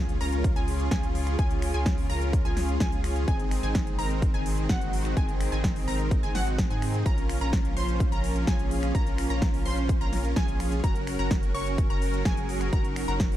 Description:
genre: EDM, festival progressive house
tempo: 127 BPM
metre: 4/4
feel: straight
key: Db major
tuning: A4 = 440 Hz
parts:
  - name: rich chamber string section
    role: sustained chords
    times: 0.0-13.4 s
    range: Db3 to Bb4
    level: -36 LUFS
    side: right 1 dB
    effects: sidechain pumping
  - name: wide unison pluck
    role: arpeggios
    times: 0.0-13.4 s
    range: Gb5 to Db6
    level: -36 LUFS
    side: equal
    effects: sidechain pumping, ping-pong delay
  - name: dense compressed supersaw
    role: riff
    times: 0.0-13.4 s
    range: C4 to Db5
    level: -32 LUFS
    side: equal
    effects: cassette tape, sidechain pumping, ping-pong delay
  - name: saturated sub bass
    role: bass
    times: 0.0-13.4 s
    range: Gb1 to Ab2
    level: -30 LUFS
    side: equal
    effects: sidechain pumping
  - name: impact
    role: sound effects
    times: 0.0-1.4 s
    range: none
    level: -43 LUFS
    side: equal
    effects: none
  - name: big-room dance drum kit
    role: drums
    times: 0.1-13.4 s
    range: finger snaps, hi-hat, snare drum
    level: -34 LUFS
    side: equal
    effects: overdrive
  - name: electronic kick drum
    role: drums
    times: 0.4-13.3 s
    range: none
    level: -27 LUFS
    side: equal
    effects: overdrive
room: digital ambience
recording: dark, warm production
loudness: -24 LUFS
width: side -13 dB against mid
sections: 0.0-13.4 A section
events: impact 0.0-1.4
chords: 0.0 Db; 3.3 Ab; 7.1 Bbm; 10.8 Gb

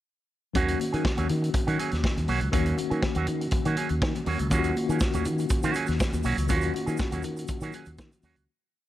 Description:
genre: disco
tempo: 121 BPM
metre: 4/4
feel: straight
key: Eb minor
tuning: A4 = 443 Hz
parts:
  - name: electric guitar with an envelope filter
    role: accompaniment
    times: 0.5-8.4 s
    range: Gb3 to Ab4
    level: -32 LUFS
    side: right 6 dB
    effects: none
  - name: mellow tine electric piano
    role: accompaniment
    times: 0.5-8.5 s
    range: Eb3 to Gb4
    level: -31 LUFS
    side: left 4 dB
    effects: medium stereo tremolo
  - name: congas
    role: percussion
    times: 0.5-8.4 s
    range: none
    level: -39 LUFS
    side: left 4 dB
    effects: none
  - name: fingered electric bass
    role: bass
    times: 0.6-8.5 s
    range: Cb2 to Eb3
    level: -28 LUFS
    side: equal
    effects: none
  - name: vintage drum kit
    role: drums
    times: 0.6-8.5 s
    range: hi-hat, kick drum, snare drum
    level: -29 LUFS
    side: equal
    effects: none
  - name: tube shaker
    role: percussion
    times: 4.5-8.5 s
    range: none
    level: -44 LUFS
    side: right 6 dB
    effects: none
room: small room ambience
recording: none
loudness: -24 LUFS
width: side -14 dB against mid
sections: 0.6-8.5 groove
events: fade-out 6.5-8.5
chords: 0.6 Ebm7

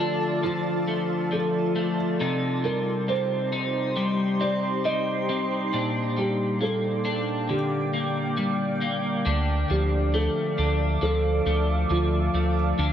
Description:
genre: dream pop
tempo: 68 BPM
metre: 4/4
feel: straight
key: C dorian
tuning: A4 = 440 Hz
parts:
  - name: felt-muted upright piano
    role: melody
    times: 0.0-12.5 s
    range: F4 to Eb5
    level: -29 LUFS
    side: right 2 dB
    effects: digital delay
  - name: shimmering ambient pad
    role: sustained chords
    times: 0.0-12.9 s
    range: Bb3 to D6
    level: -29 LUFS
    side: right 1 dB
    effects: chorus, built-in reverb
  - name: electric guitar at the edge of break-up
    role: arpeggios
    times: 0.0-12.9 s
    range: Bb2 to Eb4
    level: -26 LUFS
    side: left 2 dB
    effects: analog chorus, digital delay
  - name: round analog bass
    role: bass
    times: 9.3-12.9 s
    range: D2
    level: -24 LUFS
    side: equal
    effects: none
room: moderate plate reverb, RT60 3.5 s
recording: none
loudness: -23 LUFS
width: side -9 dB against mid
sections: 0.0-12.9 A section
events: none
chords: 0.0 Dm; 2.2 Cm; 5.7 Gm/Bb; 9.3 Dm

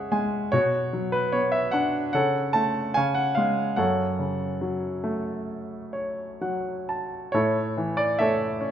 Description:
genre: classical, lyrical solo piano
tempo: 62-75 BPM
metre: 4/4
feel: rubato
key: F# minor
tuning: A4 = 440 Hz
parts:
  - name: clear concert grand piano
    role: solo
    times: 0.0-8.7 s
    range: F#2 to A5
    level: -23 LUFS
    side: equal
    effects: none
room: moderate recital hall reverb, RT60 1.7 s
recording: minimal, uncompressed stereo recording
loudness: -23 LUFS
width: side -9 dB against mid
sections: 0.0-7.3 A section; 7.3-8.7 B section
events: grand piano fill 0.0-0.5, 5.5-7.3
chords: 0.0 C#; 0.5 Bm; 2.1 F#m/C#; 3.0 C#; 3.8 F#m; 7.3 A

